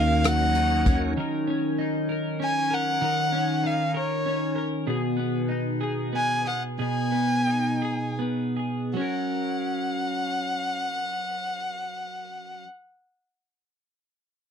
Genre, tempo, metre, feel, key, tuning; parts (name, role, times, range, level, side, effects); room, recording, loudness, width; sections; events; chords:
six-eight pop ballad; 50-65 BPM (dotted quarters); 6/8; straight; F# major; A4 = 438 Hz
clear violin; melody; 0.0-12.6 s; C#5 to G#5; -27 LUFS; equal
twelve-string electric guitar; accompaniment; 0.0-12.7 s; B2 to A#4; -27 LUFS; equal; double-tracked left and right
bright tonewheel organ; sustained chords; 0.0-1.1 s; D#3 to F#4; -31 LUFS; equal; chorus vibrato, slow rotary speaker
upright bass; bass; 0.0-1.1 s; D#2; -24 LUFS; equal
natural country drum kit; drums; 0.2-1.0 s; hi-hat, kick drum, rim click; -22 LUFS; equal
little or no reverb; dry, close 1970s-style studio recording; -24 LUFS; side -7 dB against mid
0.0-1.2 A section; 1.2-9.0 B section; 9.0-13.8 C section
slowing down 4.9-9.0
0.0 D#m7; 4.9 B6; 9.0 F#